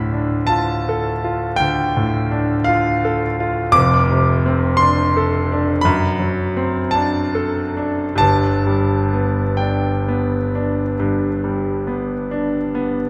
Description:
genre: classical, romantic nocturne for solo piano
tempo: 42-59 BPM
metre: 4/4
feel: rubato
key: unclear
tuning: A4 = 440 Hz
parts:
  - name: bright concert grand piano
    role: solo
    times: 0.0-13.1 s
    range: F1 to D6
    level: -18 LUFS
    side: equal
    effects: none
room: wet concert hall reverb, RT60 2.0 s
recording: heard from further back in the room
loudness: -18 LUFS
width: mono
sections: 0.0-13.1 A section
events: none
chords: 0.0 Dm; 3.8 Dm7/F; 5.9 D7/F#; 8.2 G

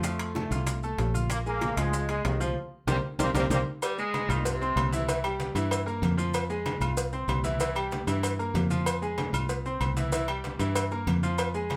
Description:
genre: latin, salsa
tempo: 190 BPM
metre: 4/4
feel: straight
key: F minor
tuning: A4 = 439 Hz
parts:
  - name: bright trombone section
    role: melody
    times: 0.0-3.6 s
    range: Eb3 to C4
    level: -35 LUFS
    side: equal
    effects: none
  - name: bright baby grand piano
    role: accompaniment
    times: 0.0-11.8 s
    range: E3 to F6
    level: -35 LUFS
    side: equal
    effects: none
  - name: fingered electric bass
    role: bass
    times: 0.0-11.8 s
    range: Bb1 to G2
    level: -32 LUFS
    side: equal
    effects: none
  - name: bongos and cowbell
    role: percussion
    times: 0.0-11.8 s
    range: none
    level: -38 LUFS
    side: equal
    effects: none
  - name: congas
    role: percussion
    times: 0.0-11.8 s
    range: none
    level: -40 LUFS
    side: equal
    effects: none
  - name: maracas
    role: percussion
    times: 0.0-11.8 s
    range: none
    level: -44 LUFS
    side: equal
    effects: none
  - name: timbales and agogo bells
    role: percussion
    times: 0.0-11.8 s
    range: none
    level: -38 LUFS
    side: equal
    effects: none
  - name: edgy saxophone section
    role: second line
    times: 3.8-5.1 s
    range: C3 to Ab3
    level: -34 LUFS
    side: equal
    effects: none
room: wet studio reverb, RT60 0.5 s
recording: band playing live in one room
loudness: -29 LUFS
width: mono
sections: 0.0-3.8 A section; 3.8-11.8 B section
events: drum fill 2.6-3.8; band accent 2.6-3.8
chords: 0.0 F; 1.3 Bbm7; 2.6 C5; 3.8 Fm; 5.1 C7; 6.3 Fm; 7.6 C7; 8.9 Fm; 10.1 C7

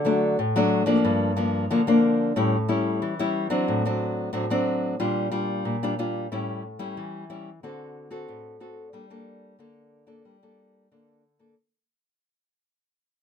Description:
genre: samba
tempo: 91 BPM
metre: 4/4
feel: straight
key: G harmonic minor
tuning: A4 = 439 Hz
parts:
  - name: nylon-string guitar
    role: solo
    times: 0.0-11.5 s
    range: G2 to A4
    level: -23 LUFS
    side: left 1 dB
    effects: none
room: moderate small room reverb, RT60 0.5 s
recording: minimal, uncompressed stereo recording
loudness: -22 LUFS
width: side -8 dB against mid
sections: 0.0-11.6 A section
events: fade-out 0.0-11.6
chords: 0.0 D; 1.0 Gm7; 2.4 A7; 3.7 D7/A; 5.0 Gm7/Bb; 6.3 A7; 7.6 D7; 8.9 Gmadd9

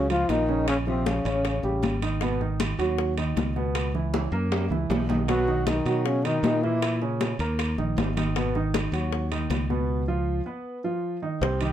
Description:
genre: Afro-Cuban jazz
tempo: 156 BPM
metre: 4/4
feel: straight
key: unclear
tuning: A4 = 440 Hz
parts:
  - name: warm trombone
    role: melody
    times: 0.0-2.0, 5.3-7.0 s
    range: B#3 to F#4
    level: -27 LUFS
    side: equal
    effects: none
  - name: growling tenor saxophone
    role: second line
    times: 0.0-2.0, 5.3-7.0 s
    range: B#2 to F#3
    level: -32 LUFS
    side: left 4 dB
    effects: none
  - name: warm concert grand piano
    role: accompaniment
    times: 0.0-11.7 s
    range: A#2 to C#5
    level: -28 LUFS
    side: right 3 dB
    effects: none
  - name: modern bright fingered electric bass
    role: bass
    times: 0.0-11.7 s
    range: G#1 to B2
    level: -28 LUFS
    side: equal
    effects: none
  - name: bongos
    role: percussion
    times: 0.1-11.6 s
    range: none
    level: -35 LUFS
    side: left 9 dB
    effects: none
  - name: congas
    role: percussion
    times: 0.1-11.7 s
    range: none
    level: -31 LUFS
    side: left 2 dB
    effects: none
  - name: timbales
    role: percussion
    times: 0.1-11.7 s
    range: none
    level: -34 LUFS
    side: right 3 dB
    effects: none
room: light reverb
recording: none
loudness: -23 LUFS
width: side -11 dB against mid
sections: 0.0-11.4 A section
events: drum fill 4.1-5.3; break 9.9-11.4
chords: 0.0 F#maj7 (rootless); 0.7 A#m; 1.4 A7; 2.2 G#m7; 3.8 C#m7; 4.5 F#7; 5.3 Bmaj7; 6.8 C#m69; 7.6 D#5; 8.4 G#m7; 9.9 C#7; 10.7 D#sus2

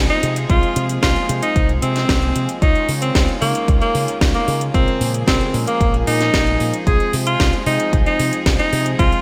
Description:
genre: italo disco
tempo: 113 BPM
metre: 4/4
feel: straight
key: F minor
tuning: A4 = 439 Hz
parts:
  - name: rich chamber string section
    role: sustained chords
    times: 0.0-9.2 s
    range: Db3 to Ab4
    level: -31 LUFS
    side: equal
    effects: vintage 12-bit sampler grit
  - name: tine electric piano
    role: stabs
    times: 0.0-9.2 s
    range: Db3 to Db5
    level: -30 LUFS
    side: equal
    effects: vintage 12-bit sampler grit
  - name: fingered electric bass with an envelope filter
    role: bass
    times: 0.0-9.1 s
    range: Bb1 to Db3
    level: -24 LUFS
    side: equal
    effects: none
  - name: clear alto saxophone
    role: melody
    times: 0.1-9.2 s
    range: Bb3 to Ab4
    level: -22 LUFS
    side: equal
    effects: delay
  - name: house drum kit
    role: drums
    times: 0.1-9.2 s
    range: hi-hat, snare drum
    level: -25 LUFS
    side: equal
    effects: gated reverb
  - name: electronic kick drum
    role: drums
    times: 0.5-9.1 s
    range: none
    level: -21 LUFS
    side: equal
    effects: none
room: light reverb, digital ambience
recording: bright 1980s-style digital production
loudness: -17 LUFS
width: mono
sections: 0.0-9.2 A section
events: none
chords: 0.0 Fm/C; 2.6 Dbadd9; 4.7 Bbm7; 6.9 Fm/C

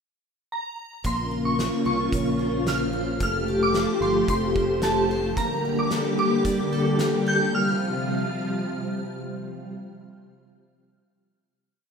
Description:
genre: dream pop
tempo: 111 BPM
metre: 4/4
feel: straight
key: F major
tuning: A4 = 440 Hz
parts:
  - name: shimmering bell with halo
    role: melody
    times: 0.5-9.1 s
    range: A5 to G6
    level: -29 LUFS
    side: right 1 dB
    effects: ensemble chorus, ping-pong delay
  - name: soft string machine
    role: sustained chords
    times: 1.0-9.7 s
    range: C3 to G4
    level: -24 LUFS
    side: equal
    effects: ensemble chorus
  - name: picked plugged-in twelve-string acoustic guitar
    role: arpeggios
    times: 1.0-8.1 s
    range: A3 to C5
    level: -29 LUFS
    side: left 2 dB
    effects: lush chorus, ping-pong delay
  - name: fingered electric bass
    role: bass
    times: 1.0-5.3 s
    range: F1 to C2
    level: -32 LUFS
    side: right 1 dB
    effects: none
  - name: oversized low-tuned drum kit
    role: drums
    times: 1.0-7.1 s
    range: hi-hat, kick drum, snare drum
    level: -33 LUFS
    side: right 1 dB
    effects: none
room: wet studio reverb, RT60 0.6 s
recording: rough home demo mix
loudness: -22 LUFS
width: side -6 dB against mid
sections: 0.0-1.0 pickup bar; 1.0-9.7 A section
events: none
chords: 0.0 N.C.; 1.0 Bbmadd9; 3.2 Fadd9; 5.4 Gmadd9; 7.5 F5

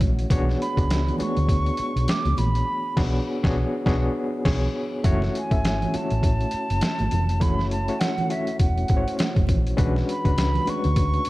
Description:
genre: lush 1970s-style soul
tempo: 101 BPM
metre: 4/4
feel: swing 58% on 16ths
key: B dorian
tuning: A4 = 439 Hz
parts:
  - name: overdriven reed electric piano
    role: accompaniment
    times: 0.0-11.3 s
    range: G#3 to E5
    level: -28 LUFS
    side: left 2 dB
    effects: fast tremolo
  - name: hollow-body short-scale fingered electric bass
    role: bass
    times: 0.0-11.3 s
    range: E1 to D2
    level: -24 LUFS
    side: equal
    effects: tube saturation
  - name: trip hop sampler-style drum kit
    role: drums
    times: 0.0-11.3 s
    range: crash cymbal, hi-hat, kick drum, snare drum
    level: -24 LUFS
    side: equal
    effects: overdrive
  - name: congas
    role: percussion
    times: 0.0-11.3 s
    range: none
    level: -32 LUFS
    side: right 4 dB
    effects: none
  - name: mellow concert flute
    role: melody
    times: 0.6-11.3 s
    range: E5 to D6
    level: -29 LUFS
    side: right 2 dB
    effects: none
room: light reverb, digital ambience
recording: dark, warm production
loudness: -20 LUFS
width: side -18 dB against mid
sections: 0.0-5.0 A section; 5.0-11.3 A section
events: band accent 2.7-5.0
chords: 0.3 Bm69; 5.0 F#m7; 9.8 Bm69

